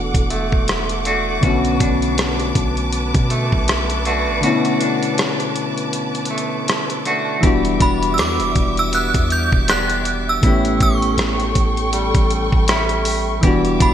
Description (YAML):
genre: contemporary R&B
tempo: 80 BPM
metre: 4/4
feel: swing 58% on 16ths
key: unclear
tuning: A4 = 437 Hz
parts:
  - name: soft electric-piano-like synth keys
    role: accompaniment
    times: 0.0-13.9 s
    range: D3 to G4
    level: -22 LUFS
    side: left 3 dB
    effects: chorus
  - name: dark studio string section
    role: sustained chords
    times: 0.0-13.9 s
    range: G3 to D6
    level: -25 LUFS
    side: equal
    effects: none
  - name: clean electric guitar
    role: arpeggios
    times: 0.0-13.9 s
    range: A2 to G4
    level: -23 LUFS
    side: right 2 dB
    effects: spring reverb
  - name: warm 808-style bass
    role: bass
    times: 0.0-13.9 s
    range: E1 to B2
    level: -23 LUFS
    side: equal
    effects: none
  - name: detuned 8-bit digital drum machine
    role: drums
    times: 0.1-13.9 s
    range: hi-hat, kick drum, rim click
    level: -19 LUFS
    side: equal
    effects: gated reverb
  - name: synth chime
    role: melody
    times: 7.8-13.9 s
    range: B5 to G6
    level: -21 LUFS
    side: right 2 dB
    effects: ensemble chorus
room: light reverb, digital ambience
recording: bright 1980s-style digital production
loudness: -15 LUFS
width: side -10 dB against mid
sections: 0.0-7.4 A section; 7.4-13.9 B section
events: kick muted 4.4-7.4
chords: 0.0 E9sus4; 1.4 Bm7; 7.4 Em7; 10.4 A7; 13.4 Em7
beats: 0.68 | 1.43 2.18 2.93 3.68 | 4.43 5.18 5.93 6.68 | 7.43 8.18 8.93 9.68 | 10.43 11.18 11.93 12.68 | 13.43